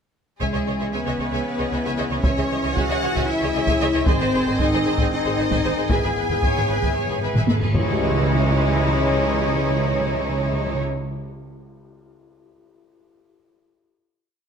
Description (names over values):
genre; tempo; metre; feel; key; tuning
cinematic, epic orchestral film score; 229 BPM (eighths); 7/8; straight; C# minor; A4 = 435 Hz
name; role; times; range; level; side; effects
clear symphonic violin section; melody; 0.4-10.8 s; E4 to G#5; -29 LUFS; left 2 dB; none
clear symphonic violin section; second line; 0.4-10.8 s; C#4 to G#5; -30 LUFS; left 3 dB; none
warm symphonic viola section; accompaniment; 0.4-10.8 s; E3 to C#5; -29 LUFS; right 2 dB; none
bright trombone section; sustained chords; 0.4-10.8 s; D#3 to C#4; -32 LUFS; right 3 dB; none
clear woodwind section; sustained chords; 0.4-10.8 s; E3 to G#5; -31 LUFS; left 1 dB; none
mellow French horn section; sustained chords; 0.4-10.8 s; G#3 to G#4; -28 LUFS; left 7 dB; none
clear symphonic double bass section; bass; 0.4-10.8 s; G#1 to C#2; -28 LUFS; right 3 dB; none
rich symphonic cello section; bass; 0.4-10.8 s; G#3 to C#5; -27 LUFS; right 1 dB; none
taiko ensemble; drums; 0.4-7.9 s; none; -23 LUFS; equal; none
timpani; percussion; 0.4-1.2, 5.9-10.8 s; G#2 to C#3; -26 LUFS; equal; none
cymbal swell and tam-tam; percussion; 4.1-9.8 s; none; -32 LUFS; left 3 dB; none
room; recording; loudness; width
moderate scoring stage reverb, RT60 1.5 s; none; -19 LUFS; side -7 dB against mid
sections
0.4-7.7 theme; 7.7-11.4 final chord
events
timpani fill 5.9-7.7; drum fill 7.4-7.7; band accent 7.7-8.3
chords
0.4 C#madd9; 4.1 G#; 5.9 E/G#; 7.7 C#madd9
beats
| 0.41 0.67 0.94 1.20 1.46 1.72 1.98 | 2.24 2.51 2.77 3.03 3.29 3.55 3.81 | 4.08 4.34 4.60 4.86 5.13 5.39 5.65 | 5.91 6.17 6.44 6.70 6.96 7.22 7.48 | 7.75 8.01 8.27 8.53 8.79 9.05 9.32 | 9.58 9.84 10.10 10.36 10.62